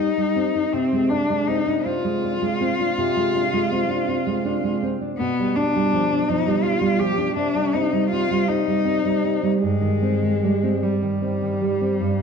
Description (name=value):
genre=romantic duo for cello and classical guitar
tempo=50-56 BPM (dotted quarters)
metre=12/8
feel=rubato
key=C minor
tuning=A4 = 440 Hz
part: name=rich cello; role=melody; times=0.0-12.2 s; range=G3 to G4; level=-22 LUFS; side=left 5 dB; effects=none
part: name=nylon-string guitar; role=accompaniment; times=0.0-12.2 s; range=G2 to Eb4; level=-22 LUFS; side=right 4 dB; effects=none
room=wet recital hall reverb, RT60 1.6 s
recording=dark, warm production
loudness=-19 LUFS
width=side -6 dB against mid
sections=0.0-12.2 A section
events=none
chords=0.0 Cm; 0.7 Dm7b5/C; 5.2 G7/B; 7.4 Cm; 9.6 Cm/G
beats=| 0.73 1.86 2.98 4.08 | 5.19 6.28 7.37 8.49 | 9.63 10.83 12.02